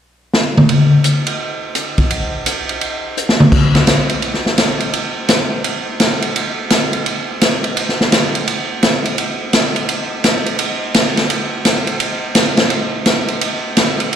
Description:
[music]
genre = jazz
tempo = 170 BPM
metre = 4/4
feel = swing 64% on 8ths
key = none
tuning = none
[part]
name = swinging big-band drum kit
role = drums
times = 0.3-14.2 s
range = crash cymbal, hi-hat, kick drum, ride cymbal, snare drum, toms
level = -13 LUFS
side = equal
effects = none
[sound]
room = wet plate reverb, RT60 2.2 s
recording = live gig heard through the venue's PA, recital hall reverb, faint mains hum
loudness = -13 LUFS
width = side -9 dB against mid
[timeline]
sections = 0.7-3.5 A section; 3.5-14.2 B section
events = drum fill 0.3-0.7, 3.2-3.5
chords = none

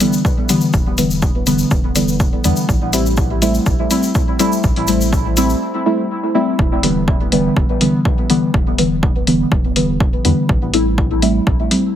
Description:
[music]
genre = dub techno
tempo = 123 BPM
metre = 4/4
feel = straight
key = E minor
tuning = A4 = 438 Hz
[part]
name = deep mellow chord stab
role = stabs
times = 0.0-11.9 s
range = D3 to E4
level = -16 LUFS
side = equal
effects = chorus, phaser, sidechain pumping, dub echo
[part]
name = electronic hi-hat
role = drums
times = 0.0-11.8 s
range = none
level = -21 LUFS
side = left 3 dB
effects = none
[part]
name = egg shaker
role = percussion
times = 0.0-5.6 s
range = none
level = -25 LUFS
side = left 4 dB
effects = none
[part]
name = electronic kick drum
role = drums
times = 0.2-11.6 s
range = none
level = -17 LUFS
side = equal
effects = none
[part]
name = soft dub sub bass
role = bass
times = 0.7-11.5 s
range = E1 to E2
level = -21 LUFS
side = equal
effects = sidechain pumping
[sound]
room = light reverb, digital ambience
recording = heavily compressed radio sound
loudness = -13 LUFS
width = side -10 dB against mid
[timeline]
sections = 0.0-6.6 A section; 6.6-12.0 A section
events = break 5.6-6.6; filter sweep on synth stab 6.6-12.0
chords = 0.0 Em7; 2.7 Am7; 6.6 Em7; 10.5 Am7

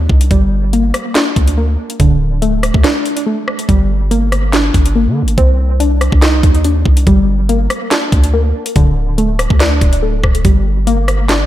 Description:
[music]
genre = hip hop, drill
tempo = 142 BPM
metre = 4/4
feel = half-time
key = G minor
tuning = A4 = 439 Hz
[part]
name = warbly dusty pluck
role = arpeggios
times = 0.0-11.5 s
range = D3 to Eb4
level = -16 LUFS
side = equal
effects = chorus, low-pass filter, diffuse ambient delay
[part]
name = long sustained 808-style bass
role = bass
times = 0.0-11.5 s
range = D1 to D3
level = -14 LUFS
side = equal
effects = none
[part]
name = drill drum kit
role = drums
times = 0.1-11.4 s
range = handclaps, hi-hat, kick drum, rim click, snare drum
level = -13 LUFS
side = equal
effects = none
[sound]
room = light reverb, digital ambience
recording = none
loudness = -10 LUFS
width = side -13 dB against mid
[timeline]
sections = 0.0-11.5 A section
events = break 2.8-3.7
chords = 0.3 Gm; 2.0 D5; 3.7 Gm; 5.4 Cmadd9; 7.1 Gm; 8.8 D5; 10.4 Gm

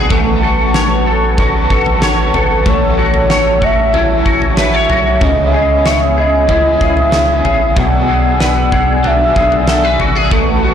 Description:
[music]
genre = dream pop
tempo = 94 BPM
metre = 4/4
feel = straight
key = unclear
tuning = A4 = 445 Hz
[part]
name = crunchy overdriven guitar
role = accompaniment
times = 0.0-10.7 s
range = A2 to G#4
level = -23 LUFS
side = right 3 dB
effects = tremolo, lush chorus
[part]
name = hollow soft pad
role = sustained chords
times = 0.0-10.7 s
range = B4 to E6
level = -20 LUFS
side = equal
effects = chorus
[part]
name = electric guitar at the edge of break-up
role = arpeggios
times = 0.0-10.7 s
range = B2 to C#5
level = -16 LUFS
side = left 2 dB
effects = ensemble chorus, ping-pong delay
[part]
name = round analog bass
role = bass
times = 0.0-10.7 s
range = G#1 to C#2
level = -17 LUFS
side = equal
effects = none
[part]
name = huge arena drum kit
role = drums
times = 0.1-10.5 s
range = kick drum, snare drum, toms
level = -17 LUFS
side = equal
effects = none
[part]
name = warbly nostalgic lead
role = melody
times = 2.4-10.1 s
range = B4 to F#5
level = -15 LUFS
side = equal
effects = chorus, ping-pong delay
[sound]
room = moderate plate reverb, RT60 1.5 s, small room ambience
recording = blown-out, overdriven recording, overdrive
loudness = -10 LUFS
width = side -8 dB against mid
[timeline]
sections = 0.0-10.7 A section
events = none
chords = 0.1 A69; 2.7 F#m7/A; 5.2 C#m9; 7.8 E9/B

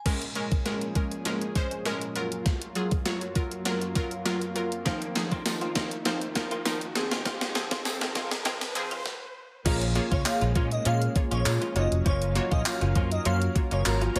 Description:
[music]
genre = dance-pop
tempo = 100 BPM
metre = 4/4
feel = straight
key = Bb minor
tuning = A4 = 440 Hz
[part]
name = glassy wavetable pluck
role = accompaniment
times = 0.1-14.2 s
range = F3 to Db5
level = -34 LUFS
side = equal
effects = chorus, sidechain pumping
[part]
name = lush unison pad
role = sustained chords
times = 0.1-14.2 s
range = F2 to F5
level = -41 LUFS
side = equal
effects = chorus, sidechain pumping
[part]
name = gated 80s digital drum machine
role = drums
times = 0.1-14.2 s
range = crash cymbal, handclaps, hi-hat, kick drum, snare drum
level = -31 LUFS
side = equal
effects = gated reverb, gated reverb snare, overdrive
[part]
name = riser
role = sound effects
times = 4.2-9.1 s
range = none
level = -44 LUFS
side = equal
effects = none
[part]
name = direct-recorded clean electric guitar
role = riff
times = 4.9-14.2 s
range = Eb3 to F4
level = -37 LUFS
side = equal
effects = ensemble chorus
[part]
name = tambourine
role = percussion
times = 5.5-14.0 s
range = none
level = -43 LUFS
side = equal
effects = none
[part]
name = airy dreamy lead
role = melody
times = 9.7-14.2 s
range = Bb4 to F5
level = -35 LUFS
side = equal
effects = chorus, sidechain pumping, tape echo
[part]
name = vintage muted fingered electric bass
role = bass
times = 9.7-14.2 s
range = E1 to Bb2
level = -29 LUFS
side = equal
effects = sidechain pumping
[sound]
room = light reverb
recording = high-pass filter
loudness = -28 LUFS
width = mono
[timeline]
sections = 0.1-9.7 A section; 9.7-14.2 B section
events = build-up 0.1-9.7; drum fill 0.1-9.1; filter sweep 0.1-9.7; stop 9.1-9.7; drop 9.7-14.2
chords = 0.1 Bbm7; 2.2 Gbmaj7; 4.9 F7sus4; 7.0 Ab6; 9.7 Bbm7; 11.8 Gbmaj7

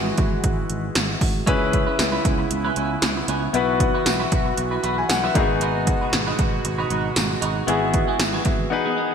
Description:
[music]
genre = 1980s-style pop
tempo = 116 BPM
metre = 4/4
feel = swing 55% on 16ths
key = unclear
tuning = A4 = 440 Hz
[part]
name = bright concert grand piano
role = accompaniment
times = 0.0-9.1 s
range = A#3 to B5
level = -24 LUFS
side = left 5 dB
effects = none
[part]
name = chorused pulse-width pad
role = sustained chords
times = 0.0-9.1 s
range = B2 to G#4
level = -28 LUFS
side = right 2 dB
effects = none
[part]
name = sustaining fretless electric bass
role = bass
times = 0.0-8.6 s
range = G#1 to C#2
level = -27 LUFS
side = right 1 dB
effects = lush chorus
[part]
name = 80s electronic pad drums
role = drums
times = 0.2-8.6 s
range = hi-hat, kick drum, snare drum, tambourine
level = -22 LUFS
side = right 1 dB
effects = gated reverb
[part]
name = clean electric guitar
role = riff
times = 1.5-9.1 s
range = B3 to B4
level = -28 LUFS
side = right 4 dB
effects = lush chorus
[sound]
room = moderate lush hall reverb, RT60 2.1 s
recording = bright 1980s-style digital production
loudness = -19 LUFS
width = side -7 dB against mid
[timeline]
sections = 0.0-9.1 A section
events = grand piano fill 4.6-5.6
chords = 0.0 Eadd9/G#; 1.5 C#m7; 3.5 Bsus4; 5.4 G#m7; 7.7 Eadd9/G#

